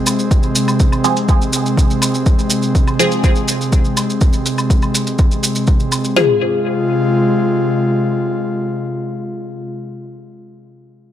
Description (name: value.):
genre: dub techno.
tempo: 123 BPM.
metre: 4/4.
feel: straight.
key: F minor.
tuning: A4 = 438 Hz.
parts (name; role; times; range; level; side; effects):
airy breathy pad; sustained chords; 0.0-9.7 s; C3 to F4; -17 LUFS; equal; chorus, sidechain pumping.
electronic hi-hat; drums; 0.1-6.0 s; none; -26 LUFS; right 1 dB; overdrive, low-pass filter on hats.
maracas; percussion; 0.1-6.1 s; none; -21 LUFS; right 2 dB; none.
woodblock; percussion; 0.1-6.0 s; none; -27 LUFS; equal; sidechain pumping on perc, dub echo.
deep house drum kit; drums; 0.3-6.3 s; kick drum, snare drum, toms; -14 LUFS; equal; none.
filtered dub chord stab; stabs; 1.0-9.7 s; F3 to Ab4; -18 LUFS; left 1 dB; phaser, sidechain pumping, dub echo.
room: light reverb, digital ambience.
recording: dry, gritty hardware recording.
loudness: -13 LUFS.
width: side -11 dB against mid.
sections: 0.0-6.2 A section; 6.2-10.1 B section.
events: none.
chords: 0.0 Fm.